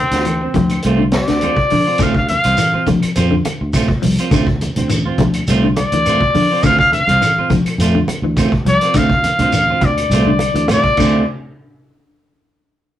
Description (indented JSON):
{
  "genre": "afrobeat",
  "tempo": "104 BPM",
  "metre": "4/4",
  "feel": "straight",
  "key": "D minor",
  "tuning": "A4 = 440 Hz",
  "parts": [
    { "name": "clear trumpet", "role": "melody", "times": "0.0-11.3 s", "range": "C4 to F5", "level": "-15 LUFS", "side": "left 1 dB", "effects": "none" },
    { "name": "fingered electric bass", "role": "bass", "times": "0.0-11.2 s", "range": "C2 to D3", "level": "-19 LUFS", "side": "equal", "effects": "none" },
    { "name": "electric guitar at the edge of break-up", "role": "stabs", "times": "0.1-11.2 s", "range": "A3 to F4", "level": "-20 LUFS", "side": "right 4 dB", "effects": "none" },
    { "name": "vintage drum kit", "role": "drums", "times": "0.1-11.1 s", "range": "crash cymbal, hi-hat, kick drum, snare drum", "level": "-21 LUFS", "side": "equal", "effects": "none" },
    { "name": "congas", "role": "percussion", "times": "0.1-11.1 s", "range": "none", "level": "-24 LUFS", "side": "right 2 dB", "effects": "none" },
    { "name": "clean electric guitar", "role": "arpeggios", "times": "0.3-11.2 s", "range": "D3 to F3", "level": "-21 LUFS", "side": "left 3 dB", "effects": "spring reverb" },
    { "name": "claves", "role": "percussion", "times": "0.3-11.1 s", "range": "none", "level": "-32 LUFS", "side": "right 2 dB", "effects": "none" },
    { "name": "shekere", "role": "percussion", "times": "2.0-11.1 s", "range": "none", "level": "-24 LUFS", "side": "right 1 dB", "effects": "none" }
  ],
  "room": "moderate studio reverb, RT60 0.5 s",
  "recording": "rough rehearsal-room recording",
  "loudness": "-12 LUFS",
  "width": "side -12 dB against mid",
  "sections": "0.0-11.3 A section; 11.3-13.0 B section",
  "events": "trumpet solo 0.0-11.3; drum fill 10.7-11.3",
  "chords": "0.0 Dm7; 11.3 N.C.",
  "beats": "0.26 0.84 1.42 | 2.00 2.58 3.16 3.74 | 4.32 4.89 5.47 6.05 | 6.63 7.21 7.79 8.37 | 8.95 9.53 10.11 10.69 | 11.27"
}